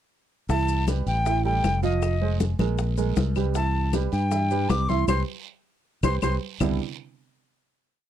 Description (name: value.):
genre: Afro-Cuban jazz.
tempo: 157 BPM.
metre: 4/4.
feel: straight.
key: C major.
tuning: A4 = 445 Hz.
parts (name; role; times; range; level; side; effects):
breathy bright jazz flute; melody; 0.5-6.3 s; Eb5 to D6; -27 LUFS; left 2 dB; none.
warm baby grand piano; accompaniment; 0.5-6.8 s; C3 to F5; -29 LUFS; right 14 dB; none.
modern bright fingered electric bass; bass; 0.5-6.8 s; F1 to G2; -24 LUFS; left 1 dB; none.
bongos; percussion; 0.5-6.7 s; none; -32 LUFS; left 10 dB; none.
congas; percussion; 0.5-6.7 s; none; -30 LUFS; left 2 dB; none.
guiro; percussion; 0.5-6.7 s; none; -44 LUFS; right 18 dB; none.
maracas; percussion; 0.5-6.7 s; none; -44 LUFS; left 24 dB; none.
claves; percussion; 0.9-6.7 s; none; -38 LUFS; left 23 dB; none.
room: little or no reverb.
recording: dry, close 1970s-style studio recording.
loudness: -22 LUFS.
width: side -11 dB against mid.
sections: 0.5-6.6 A section; 6.6-8.1 final chord.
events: band accent 5.1-6.6.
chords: 0.5 Cmaj7; 1.3 A5; 2.0 Fm7; 2.8 Bbsus2; 3.6 Cmaj7; 6.6 Cmaj9.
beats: | 0.49 0.88 1.26 1.64 | 2.02 2.40 2.79 3.17 | 3.55 3.94 4.32 4.70 | 5.08 5.47 5.85 6.23 | 6.61.